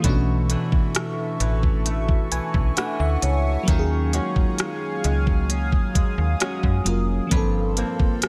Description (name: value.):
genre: contemporary R&B.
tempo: 66 BPM.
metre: 4/4.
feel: straight.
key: unclear.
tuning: A4 = 440 Hz.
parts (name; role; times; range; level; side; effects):
FM electric piano with soft pad layer; accompaniment; 0.0-8.3 s; E3 to Ab5; -29 LUFS; equal; chorus, phaser.
chorused pulse-width pad; sustained chords; 0.0-8.3 s; Gb3 to Eb6; -34 LUFS; equal; sidechain pumping.
nylon-string guitar; arpeggios; 0.0-8.3 s; G2 to Gb4; -32 LUFS; equal; digital delay.
slap-like FM bass; bass; 0.0-8.1 s; F1 to Gb2; -25 LUFS; equal; none.
smooth R&B drum kit; drums; 0.0-8.3 s; hi-hat, kick drum, rim click; -24 LUFS; equal; none.
room: digital ambience.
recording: none.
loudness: -22 LUFS.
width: mono.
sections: 0.0-8.3 A section.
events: FM electric piano fill 1.9-3.7.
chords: 0.0 Bm11; 3.7 Ebm11; 7.3 Gm11.